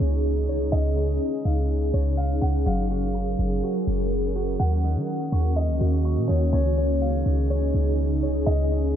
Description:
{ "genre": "hip hop", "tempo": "124 BPM", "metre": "4/4", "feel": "half-time", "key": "Db major", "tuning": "A4 = 441 Hz", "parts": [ { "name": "ethereal airy pad", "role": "sustained chords", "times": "0.0-9.0 s", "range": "Db3 to Bb4", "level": "-27 LUFS", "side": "equal", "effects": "ensemble chorus, built-in reverb" }, { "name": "Celtic harp", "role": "arpeggios", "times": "0.0-9.0 s", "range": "Eb3 to Db6", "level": "-33 LUFS", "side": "left 4 dB", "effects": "low-pass filter, ping-pong delay" }, { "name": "clean 808-style bass", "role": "bass", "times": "0.0-8.9 s", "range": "Gb1 to Eb3", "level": "-23 LUFS", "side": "equal", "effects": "none" }, { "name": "felt-muted upright piano", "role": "melody", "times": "0.7-9.0 s", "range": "Db5 to Gb5", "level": "-33 LUFS", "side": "equal", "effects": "low-pass filter, ping-pong delay" } ], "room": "light reverb, small room ambience", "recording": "low-pass filter", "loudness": "-21 LUFS", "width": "side -9 dB against mid", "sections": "0.0-9.0 A section", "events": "filter sweep 0.0-9.0", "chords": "0.0 Dbadd9; 2.7 Gbmaj7; 4.6 Ebm7; 6.5 Dbadd9", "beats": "0.24 | 0.73 1.21 1.69 2.18 | 2.66 3.15 3.63 4.11 | 4.60 5.08 5.56 6.05 | 6.53 7.02 7.50 7.98 | 8.47 8.95" }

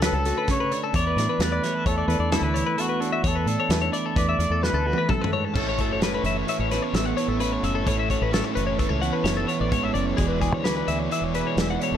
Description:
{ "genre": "math rock and midwest emo", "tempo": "130 BPM", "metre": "5/4", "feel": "straight", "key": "A major", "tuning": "A4 = 437 Hz", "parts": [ { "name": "twelve-string electric guitar", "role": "accompaniment", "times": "0.0-12.0 s", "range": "E2 to F#4", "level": "-28 LUFS", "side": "right 6 dB", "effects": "spring reverb" }, { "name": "twelve-string electric guitar", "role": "arpeggios", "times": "0.0-12.0 s", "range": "F#4 to F#5", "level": "-27 LUFS", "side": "left 7 dB", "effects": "spring reverb, digital delay" }, { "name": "deep dub fingered electric bass", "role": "bass", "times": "0.0-12.0 s", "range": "E1 to A2", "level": "-27 LUFS", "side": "equal", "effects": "none" }, { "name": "loose indie drum kit", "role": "drums", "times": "0.0-11.9 s", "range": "crash cymbal, hi-hat, kick drum, snare drum, toms", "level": "-27 LUFS", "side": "equal", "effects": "none" }, { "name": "warm trumpet", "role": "melody", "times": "0.1-5.4 s", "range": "E4 to D5", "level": "-28 LUFS", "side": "equal", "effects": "none" }, { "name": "biting overdriven guitar", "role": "riff", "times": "5.5-12.0 s", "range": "E3 to D5", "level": "-29 LUFS", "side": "right 2 dB", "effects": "none" } ], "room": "moderate studio reverb, RT60 0.6 s", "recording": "none", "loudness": "-21 LUFS", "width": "side -9 dB against mid", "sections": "0.0-5.6 A section; 5.6-12.0 B section", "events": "drum fill 4.6-5.6", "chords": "0.0 Dmaj7; 0.9 E7sus4; 5.6 A69; 10.2 E13", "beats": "0.02 0.48 | 0.94 1.40 1.86 2.32 2.79 | 3.25 3.71 4.17 4.63 5.09 | 5.55 6.01 6.48 6.94 7.40 | 7.87 8.33 8.79 9.26 9.72 | 10.18 10.65 11.11 11.58" }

